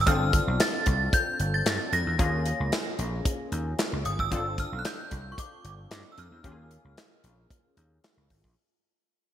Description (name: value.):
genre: early-eighties boogie funk.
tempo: 113 BPM.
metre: 4/4.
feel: straight.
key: unclear.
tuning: A4 = 440 Hz.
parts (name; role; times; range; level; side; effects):
synth chime; melody; 0.0-8.0 s; C#6 to Bb6; -30 LUFS; right 1 dB; ensemble chorus.
vintage slap bass; bass; 0.0-8.5 s; G1 to G2; -30 LUFS; equal; none.
funky polysynth comp; accompaniment; 0.1-8.6 s; Bb3 to A4; -34 LUFS; left 3 dB; chorus.
modern studio drum kit; drums; 0.1-8.6 s; handclaps, hi-hat, kick drum, snare drum; -28 LUFS; equal; gated reverb.
room: light reverb.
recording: bright 1980s-style digital production.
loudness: -25 LUFS.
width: side -11 dB against mid.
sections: 0.0-8.6 A section.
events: fade-out 0.0-8.6.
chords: 0.1 G9sus4; 2.2 Eb9sus4; 4.3 G9sus4; 6.4 Eb9sus4.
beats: | 0.07 0.60 1.13 1.66 | 2.19 2.72 3.25 3.79 | 4.32 4.85 5.38 5.91 | 6.44 6.97 7.50 8.03.